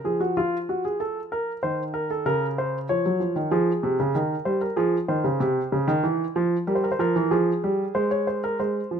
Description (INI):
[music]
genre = classical, baroque-style two-part invention for grand piano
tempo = 94 BPM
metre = 4/4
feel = straight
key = unclear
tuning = A4 = 436 Hz
[part]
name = warm grand piano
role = solo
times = 0.0-9.0 s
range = C3 to Db5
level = -22 LUFS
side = right 1 dB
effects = none
[sound]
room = moderate stone room reverb, RT60 1.0 s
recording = none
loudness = -22 LUFS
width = side -7 dB against mid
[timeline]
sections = 0.0-8.6 A section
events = none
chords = 0.0 N.C.; 1.0 F7; 2.3 Bbm/Db; 3.5 Fm; 6.0 C7/E; 7.3 Fm